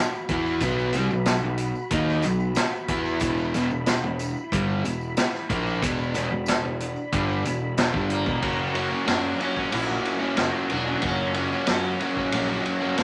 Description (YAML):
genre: psychedelic rock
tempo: 92 BPM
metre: 4/4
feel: straight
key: F# phrygian dominant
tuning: A4 = 440 Hz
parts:
  - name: mellow tonewheel organ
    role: sustained chords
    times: 0.0-13.0 s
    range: D4 to B5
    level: -36 LUFS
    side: equal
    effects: slow rotary speaker, overdrive, chorus vibrato
  - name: tambourine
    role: percussion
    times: 0.1-8.3 s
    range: none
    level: -46 LUFS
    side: equal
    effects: none
  - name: overdriven semi-hollow guitar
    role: riff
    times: 0.3-13.0 s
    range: E2 to F#4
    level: -28 LUFS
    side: equal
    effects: none
  - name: fuzz picked electric bass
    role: bass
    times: 0.3-13.0 s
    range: E1 to F#2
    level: -33 LUFS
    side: equal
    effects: overdrive
  - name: vintage drum kit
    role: drums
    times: 0.3-13.0 s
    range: crash cymbal, hi-hat, kick drum, ride cymbal, snare drum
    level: -30 LUFS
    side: equal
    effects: none
  - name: sitar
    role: melody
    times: 8.1-12.3 s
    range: A#3 to E4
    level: -35 LUFS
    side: equal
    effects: none
room: moderate studio ambience, RT60 0.5 s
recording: none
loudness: -25 LUFS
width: mono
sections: 0.0-8.4 A section; 8.4-13.0 B section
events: none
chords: 0.0 B5; 3.2 E5; 8.4 F#